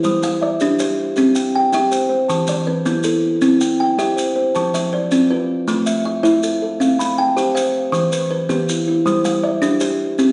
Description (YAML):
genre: southern african traditional, mbira-style interlocking cycle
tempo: 106 BPM (dotted quarters)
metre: 12/8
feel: straight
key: C major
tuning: A4 = 440 Hz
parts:
  - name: kalimba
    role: arpeggios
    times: 0.0-10.3 s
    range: E3 to B5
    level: -20 LUFS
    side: equal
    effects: none
  - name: kalimba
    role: arpeggios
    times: 0.0-10.3 s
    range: E3 to A5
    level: -22 LUFS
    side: equal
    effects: none
  - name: maracas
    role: percussion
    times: 0.0-10.3 s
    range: none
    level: -32 LUFS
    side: equal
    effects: none
room: wet recital hall reverb, RT60 1.4 s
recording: heard from further back in the room, nothing above 10.3 kHz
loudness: -18 LUFS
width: mono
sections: 0.0-10.3 A section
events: none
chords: 0.0 G5; 1.2 C; 2.3 E5; 3.4 C; 4.6 F; 5.7 Am; 6.8 C5; 7.9 Em; 9.1 G5